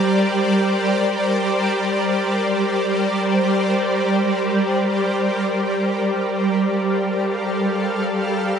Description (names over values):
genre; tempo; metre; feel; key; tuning
ambient; free time; none; none; G minor; A4 = 440 Hz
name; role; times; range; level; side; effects
shimmering ambient pad; solo; 0.0-8.6 s; G3 to F5; -17 LUFS; equal; chorus, built-in reverb, tape echo
room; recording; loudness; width
wet huge ambient reverb, RT60 7.6 s; nothing above 11.0 kHz; -17 LUFS; side -7 dB against mid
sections
0.0-5.5 A section; 5.5-8.6 A section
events
none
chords
0.0 Bbadd9/G; 5.5 Gm7